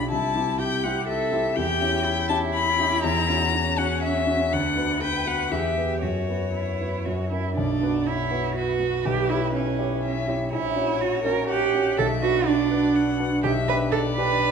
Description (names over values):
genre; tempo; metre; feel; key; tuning
quick classical-period movement for piano trio; 122 BPM; 3/4; straight; B minor; A4 = 440 Hz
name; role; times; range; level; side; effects
rich violin; melody; 0.0-14.5 s; B4 to B5; -27 LUFS; left 6 dB; none
rich cello; second line; 0.0-14.5 s; C#4 to B4; -25 LUFS; right 7 dB; none
warm concert grand piano; accompaniment; 0.0-14.5 s; A#1 to C#5; -26 LUFS; left 2 dB; none
room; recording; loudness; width
wet recital hall reverb, RT60 1.4 s; minimal, uncompressed stereo recording; -21 LUFS; side -6 dB against mid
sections
0.0-7.6 A section; 7.6-14.5 B section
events
none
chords
0.1 C; 1.6 C#dim/E; 3.0 F#7/E; 4.5 Bm/D; 5.5 Em; 6.0 F#sus4; 7.1 F#; 7.6 Bm; 9.1 C#m7b5/B; 10.5 F#7/A#; 12.0 Bm; 13.4 G/B